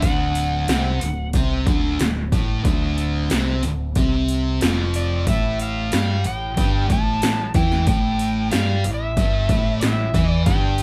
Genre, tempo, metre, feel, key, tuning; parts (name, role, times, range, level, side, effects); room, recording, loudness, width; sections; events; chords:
blues rock power trio and southern rock; 92 BPM; 4/4; straight; A4 = 438 Hz
overdriven slide guitar; melody; 0.0-10.8 s; D5 to A5; -29 LUFS; equal
thick fuzz guitar; riff; 0.0-10.8 s; D2 to G4; -26 LUFS; equal; distortion
overdriven picked electric bass; bass; 0.0-10.8 s; D1 to G2; -26 LUFS; equal
80s electronic pad drums; drums; 0.0-10.8 s; hi-hat, kick drum, snare drum; -24 LUFS; equal
light reverb; band playing live in one room; -20 LUFS; mono
0.0-10.8 A section
0.0 D7; 5.3 A5